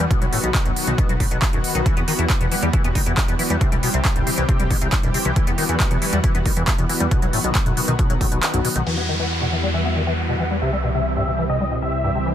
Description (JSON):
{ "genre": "uplifting trance", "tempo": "137 BPM", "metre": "4/4", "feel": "straight", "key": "E harmonic minor", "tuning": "A4 = 441 Hz", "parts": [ { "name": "analog string pad", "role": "sustained chords", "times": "0.0-12.3 s", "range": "D#3 to G4", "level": "-26 LUFS", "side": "left 1 dB", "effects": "ensemble chorus, sidechain pumping" }, { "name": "liquid acid bass", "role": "arpeggios", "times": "0.0-12.3 s", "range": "F#2 to B3", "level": "-25 LUFS", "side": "left 3 dB", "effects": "wide subtle chorus, sidechain pumping, tape echo" }, { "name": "fat analog bass", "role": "bass", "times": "0.0-12.3 s", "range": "B1 to E2", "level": "-24 LUFS", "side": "equal", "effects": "sidechain pumping" }, { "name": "big-room dance drum kit", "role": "drums", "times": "0.0-9.0 s", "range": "crash cymbal, handclaps, hi-hat", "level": "-25 LUFS", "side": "right 1 dB", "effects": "sidechain pumping on hats, low-pass filter on hats, low-pass filter on snare, sidechain pumping on cymbals, low-pass filter on cymbals, low-pass filter on room" }, { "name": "electronic kick drum", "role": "drums", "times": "0.1-8.3 s", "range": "none", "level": "-20 LUFS", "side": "equal", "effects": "none" }, { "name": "big supersaw lead", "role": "melody", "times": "8.9-12.3 s", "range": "D#5 to F#5", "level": "-27 LUFS", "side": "right 1 dB", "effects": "phaser, sidechain pumping, low-pass filter, tape echo" }, { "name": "downlifter", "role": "sound effects", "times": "8.9-12.3 s", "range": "none", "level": "-28 LUFS", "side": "equal", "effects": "none" } ], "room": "little or no reverb", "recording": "dense, heavily limited modern master", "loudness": "-17 LUFS", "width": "side -10 dB against mid", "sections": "0.0-8.9 A section; 8.9-12.3 B section", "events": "kick drops out 8.4-8.9; filter sweep on supersaw synth 8.9-12.3; filter sweep on acid bass 8.9-12.3", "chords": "0.1 B; 1.9 Emadd9; 3.6 C; 5.4 Emadd9; 7.1 B; 8.9 Emadd9; 10.6 C", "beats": "| 0.11 0.54 0.98 1.42 | 1.86 2.30 2.73 3.17 | 3.61 4.05 4.49 4.92 | 5.36 5.80 6.24 6.68 | 7.11 7.55 7.99 8.43 | 8.87 9.30 9.74 10.18 | 10.62 11.05 11.49 11.93" }